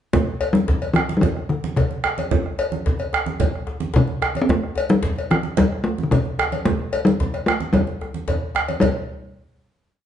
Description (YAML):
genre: west african traditional, West African drum ensemble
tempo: 111 BPM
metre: 4/4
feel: straight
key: unclear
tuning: A4 = 440 Hz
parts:
  - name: talking drum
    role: melody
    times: 0.1-9.1 s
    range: C3 to C4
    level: -20 LUFS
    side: left 2 dB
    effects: none
  - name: bombo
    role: percussion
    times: 0.1-9.1 s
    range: none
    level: -24 LUFS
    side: right 3 dB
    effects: none
  - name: congas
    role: percussion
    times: 0.1-9.1 s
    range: none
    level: -27 LUFS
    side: right 6 dB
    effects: none
  - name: djembe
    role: percussion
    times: 0.1-9.1 s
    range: none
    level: -28 LUFS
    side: left 3 dB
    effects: none
  - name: cowbell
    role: percussion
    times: 0.4-9.1 s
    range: none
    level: -28 LUFS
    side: left 4 dB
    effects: none
room: wet large studio reverb, RT60 0.9 s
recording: band playing live in one room, nothing above 10.7 kHz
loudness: -18 LUFS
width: side -10 dB against mid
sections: 0.1-8.8 A section; 8.8-10.1 final note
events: none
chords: none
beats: | 0.14 0.69 1.23 1.78 | 2.32 2.87 3.41 3.95 | 4.50 5.04 5.58 6.12 | 6.66 7.20 7.74 8.28 | 8.82